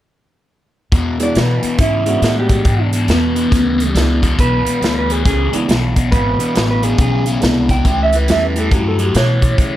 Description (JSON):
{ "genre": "electric blues shuffle", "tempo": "139 BPM", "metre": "4/4", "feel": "swing 63% on 8ths", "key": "E mixolydian", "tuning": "A4 = 436 Hz", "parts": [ { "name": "raw garage guitar", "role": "riff", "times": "0.9-9.8 s", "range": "E2 to F#3", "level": "-19 LUFS", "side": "left 2 dB", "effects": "overdrive, phaser" }, { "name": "upright bass", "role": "bass", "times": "0.9-9.8 s", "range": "G#1 to C#3", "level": "-18 LUFS", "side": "equal", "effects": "none" }, { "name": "natural country drum kit", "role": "drums", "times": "0.9-9.7 s", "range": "hi-hat, kick drum, snare drum", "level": "-17 LUFS", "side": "equal", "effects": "none" }, { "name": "electric guitar through a small old amp", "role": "melody", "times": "1.2-9.8 s", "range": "B3 to G5", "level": "-19 LUFS", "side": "right 1 dB", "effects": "none" }, { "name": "dark baby grand piano", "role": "accompaniment", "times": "1.2-8.9 s", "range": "G3 to F#4", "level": "-22 LUFS", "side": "right 4 dB", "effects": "none" } ], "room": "studio reverb", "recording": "none", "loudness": "-12 LUFS", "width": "side -13 dB against mid", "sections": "0.9-9.8 A section", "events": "none", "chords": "0.9 E7; 7.9 A7", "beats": "| 0.92 1.35 1.79 2.22 | 2.66 3.09 3.52 3.96 | 4.39 4.83 5.26 5.69 | 6.12 6.56 6.99 7.42 | 7.85 8.29 8.72 9.15 | 9.58" }